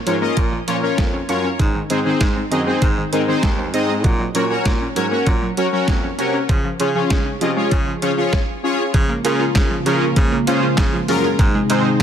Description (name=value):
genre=synth-pop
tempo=98 BPM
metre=4/4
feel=straight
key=unclear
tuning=A4 = 439 Hz
part: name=analog synth brass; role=accompaniment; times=0.1-11.9 s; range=C4 to Eb5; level=-20 LUFS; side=left 1 dB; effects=chorus
part: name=analog pluck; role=arpeggios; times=0.1-11.9 s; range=Eb3 to F4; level=-25 LUFS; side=right 2 dB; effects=chorus, tape echo
part: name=warm baritone saxophone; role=bass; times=0.1-12.0 s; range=Eb2 to Db3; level=-24 LUFS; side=equal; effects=none
part: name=detuned 8-bit digital drum machine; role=drums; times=0.1-12.0 s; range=handclaps, hi-hat, kick drum, snare drum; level=-19 LUFS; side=equal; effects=none
part: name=chorused pulse-width pad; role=sustained chords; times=8.9-12.0 s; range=C3 to F4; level=-21 LUFS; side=equal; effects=none
room=moderate lush hall reverb, RT60 1.6 s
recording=dense, heavily limited modern master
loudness=-16 LUFS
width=side -9 dB against mid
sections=0.0-8.9 A section; 8.9-12.0 B section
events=none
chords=0.0 Bbm; 1.6 Ab; 4.0 Gb; 6.5 Db; 8.9 Db6; 11.4 Ab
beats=0.37 0.98 | 1.59 2.21 2.82 3.43 | 4.04 4.66 5.27 5.88 | 6.49 7.10 7.72 8.33 | 8.94 9.55 10.17 10.78 | 11.39 12.00